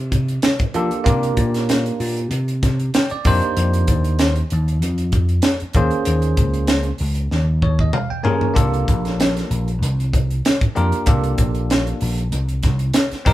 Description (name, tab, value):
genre	electric jazz fusion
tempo	96 BPM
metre	4/4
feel	swing 53% on 16ths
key	C dorian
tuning	A4 = 442 Hz
part	vintage slap bass	bass	0.0-13.3 s	Bb1 to F3	-20 LUFS	equal	none
part	crisp fusion drum kit	drums	0.1-13.3 s	hi-hat, kick drum, snare drum, toms	-19 LUFS	equal	none
part	bell-like tine electric piano	accompaniment	0.7-13.3 s	Bb3 to Ab5	-22 LUFS	right 1 dB	medium stereo tremolo
room	moderate large studio reverb, RT60 1.2 s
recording	band playing live in one room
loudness	-16 LUFS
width	side -15 dB against mid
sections	0.0-13.3 A section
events	tine electric piano fill 2.6-3.6, 7.3-8.6; drum fill 7.3-8.6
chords	0.0 C9sus4; 3.2 F13sus4; 5.8 Eb13sus4; 8.6 C13sus4